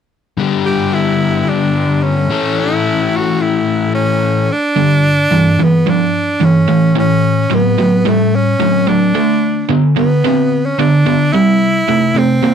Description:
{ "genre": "rock", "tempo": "110 BPM", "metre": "4/4", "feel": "straight", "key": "unclear", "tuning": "A4 = 438 Hz", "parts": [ { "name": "crunchy overdriven guitar", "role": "riff", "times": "0.4-12.5 s", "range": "G2 to A4", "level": "-14 LUFS", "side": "left 5 dB", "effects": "none" }, { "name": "bright tenor saxophone", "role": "melody", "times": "0.7-12.5 s", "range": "A3 to G4", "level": "-16 LUFS", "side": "right 2 dB", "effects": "none" }, { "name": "overdriven semi-hollow guitar", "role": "riff", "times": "4.8-12.5 s", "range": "G2 to C4", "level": "-15 LUFS", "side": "right 13 dB", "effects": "spring reverb" } ], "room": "light reverb", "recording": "dry, close 1970s-style studio recording", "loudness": "-11 LUFS", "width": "side -8 dB against mid", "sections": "0.4-4.8 A section; 4.8-12.5 B section", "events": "none", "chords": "0.4 G; 2.3 A; 4.8 G5; 6.7 A; 9.1 D5; 11.3 C" }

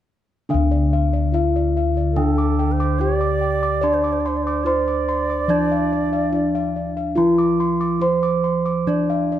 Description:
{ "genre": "Javanese gamelan", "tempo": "72 BPM", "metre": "4/4", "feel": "straight", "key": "D slendro", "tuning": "A4 = 440 Hz", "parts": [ { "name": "gamelan-type bronze metallophone", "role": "melody", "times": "0.5-9.4 s", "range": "D4 to D5", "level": "-22 LUFS", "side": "equal", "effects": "none" }, { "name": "gamelan-type bronze metallophone", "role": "accompaniment", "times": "0.5-9.4 s", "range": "D3 to D4", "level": "-24 LUFS", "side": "right 5 dB", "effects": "none" }, { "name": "gamelan-type bossed gongs", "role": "arpeggios", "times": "0.5-9.4 s", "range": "D5 to D6", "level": "-26 LUFS", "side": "left 2 dB", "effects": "none" }, { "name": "gamelan-type bossed gongs", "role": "bass", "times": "0.5-9.4 s", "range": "D2 to D5", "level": "-22 LUFS", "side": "left 2 dB", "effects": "none" }, { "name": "bansuri", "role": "second line", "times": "2.1-6.9 s", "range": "A4 to D5", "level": "-26 LUFS", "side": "right 3 dB", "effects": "none" } ], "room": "moderate recital hall reverb, RT60 1.7 s", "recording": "none", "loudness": "-17 LUFS", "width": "side -11 dB against mid", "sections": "0.5-9.4 A section", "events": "none", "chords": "none" }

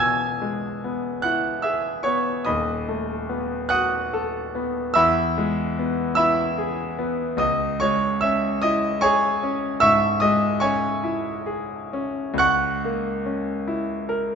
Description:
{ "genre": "classical, romantic nocturne for solo piano", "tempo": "42-52 BPM (dotted quarters)", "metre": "12/8", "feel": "rubato", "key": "unclear", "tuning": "A4 = 440 Hz", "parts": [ { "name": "bright concert grand piano", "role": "solo", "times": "0.0-14.3 s", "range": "D#1 to G#6", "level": "-20 LUFS", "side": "equal", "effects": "none" } ], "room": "moderate recital hall reverb, RT60 1.3 s", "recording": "nothing above 8.0 kHz", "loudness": "-20 LUFS", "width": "side -6 dB against mid", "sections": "0.0-14.3 A section", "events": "none", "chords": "0.0 E; 2.5 B7/D#; 5.0 E; 7.4 C#m; 12.4 A#dim/C#" }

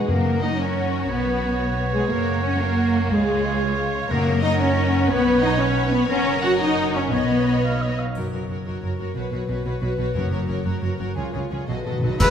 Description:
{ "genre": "cinematic, heroic adventure film score", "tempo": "120 BPM (dotted quarters)", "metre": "6/8", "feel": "straight", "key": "B lydian", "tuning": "A4 = 440 Hz", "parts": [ { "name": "warm studio violin section", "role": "melody", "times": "0.0-12.3 s", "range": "G#4 to B5", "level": "-33 LUFS", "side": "left 4 dB", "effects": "none" }, { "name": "flute section", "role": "second line", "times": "0.0-8.0, 12.2-12.3 s", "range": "D#5 to G#5", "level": "-32 LUFS", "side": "left 3 dB", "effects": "none" }, { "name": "warm symphonic viola section", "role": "accompaniment", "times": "0.0-12.3 s", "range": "G#3 to G#4", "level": "-25 LUFS", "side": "equal", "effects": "none" }, { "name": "warm French horn section", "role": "sustained chords", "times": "0.0-8.0, 12.2-12.3 s", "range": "G#3 to B4", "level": "-28 LUFS", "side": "left 4 dB", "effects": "none" }, { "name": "concert harp", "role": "arpeggios", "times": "0.0-12.3 s", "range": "F#2 to F#5", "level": "-30 LUFS", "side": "left 7 dB", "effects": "none" }, { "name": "warm symphonic cello section", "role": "bass", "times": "0.0-12.3 s", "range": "E2 to F#4", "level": "-30 LUFS", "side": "right 4 dB", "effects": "none" }, { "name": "warm oboe", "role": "second line", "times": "0.1-8.2, 12.2-12.3 s", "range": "A#4 to E#5", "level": "-29 LUFS", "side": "right 3 dB", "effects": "none" }, { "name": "warm symphonic violin section", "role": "second line", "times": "0.1-12.3 s", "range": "E#4 to B5", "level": "-32 LUFS", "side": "left 2 dB", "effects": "none" }, { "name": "dark symphonic double bass section", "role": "bass", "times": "0.1-12.3 s", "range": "E1 to F#2", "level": "-27 LUFS", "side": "right 3 dB", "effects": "none" }, { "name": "timpani", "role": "percussion", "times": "0.1-0.6, 4.1-4.6, 10.2-12.3 s", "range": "E2 to B2", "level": "-27 LUFS", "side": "left 1 dB", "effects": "none" }, { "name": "triangle, cymbal swell, clash cymbals and concert bass drum", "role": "percussion", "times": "8.2-12.3 s", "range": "none", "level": "-24 LUFS", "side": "equal", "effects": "none" }, { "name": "dark trumpet", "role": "stabs", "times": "12.2-12.3 s", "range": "B4", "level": "-24 LUFS", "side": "equal", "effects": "none" } ], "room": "moderate scoring stage reverb, RT60 1.9 s", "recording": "none", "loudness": "-19 LUFS", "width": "side -8 dB against mid", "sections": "0.1-8.2 A section; 8.2-12.2 B section", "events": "timpani fill 11.7-12.2", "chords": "0.1 F#; 1.1 Bsus2; 2.1 F#; 3.1 C#; 4.1 F#; 5.1 Bsus2; 6.1 F#; 7.1 Badd9; 8.2 F#; 9.2 Bsus2; 10.2 F#; 11.2 C#; 11.7 B7" }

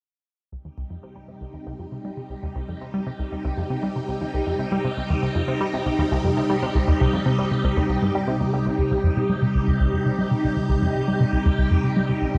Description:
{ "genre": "ambient", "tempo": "118 BPM", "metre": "4/4", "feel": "straight", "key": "C minor", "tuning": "A4 = 439 Hz", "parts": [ { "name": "phased string machine", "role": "sustained chords", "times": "1.4-12.4 s", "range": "C3 to G4", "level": "-26 LUFS", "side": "equal", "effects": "ensemble chorus, phaser, shimmer reverb" }, { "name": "tight sequenced synth", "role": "riff", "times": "0.5-12.4 s", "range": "C2 to G3", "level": "-26 LUFS", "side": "equal", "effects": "chorus, phaser, delay" } ], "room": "wet plate reverb, RT60 2.5 s", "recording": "none", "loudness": "-23 LUFS", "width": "mono", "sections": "0.5-8.7 A section; 8.7-12.4 B section", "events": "fade-in on synth arpeggio sound 0.5-8.7; fade-in on string machine 0.5-8.7; filter sweep on synth arpeggio sound 8.7-12.4", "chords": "0.5 Cm" }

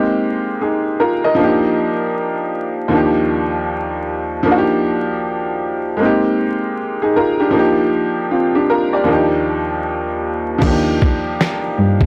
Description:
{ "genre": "lo-fi hip hop", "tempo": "78 BPM", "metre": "4/4", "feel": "swing 62% on 16ths", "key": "Eb major", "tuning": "A4 = 441 Hz", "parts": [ { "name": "clear upright piano", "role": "accompaniment", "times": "0.0-12.1 s", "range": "Eb2 to Eb5", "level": "-18 LUFS", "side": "equal", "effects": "none" }, { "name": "dark cello", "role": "bass", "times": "10.6-12.1 s", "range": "Eb2 to G2", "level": "-20 LUFS", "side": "equal", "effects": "none" }, { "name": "dusty soul sampler-style drum kit", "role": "drums", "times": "10.6-12.1 s", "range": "crash cymbal, kick drum, snare drum", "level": "-19 LUFS", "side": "equal", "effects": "none" } ], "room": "little or no reverb", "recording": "dry, gritty hardware recording, vinyl crackle", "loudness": "-17 LUFS", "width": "mono", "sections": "0.0-10.6 A section; 10.6-12.1 B section", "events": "hi-hats muted 10.6-12.1", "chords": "0.0 Abmaj9; 1.4 Ebmaj7; 2.9 Ebmaj9; 4.5 Ebmaj7; 6.0 Abmaj9; 7.5 Ebmaj7; 9.1 Ebmaj9" }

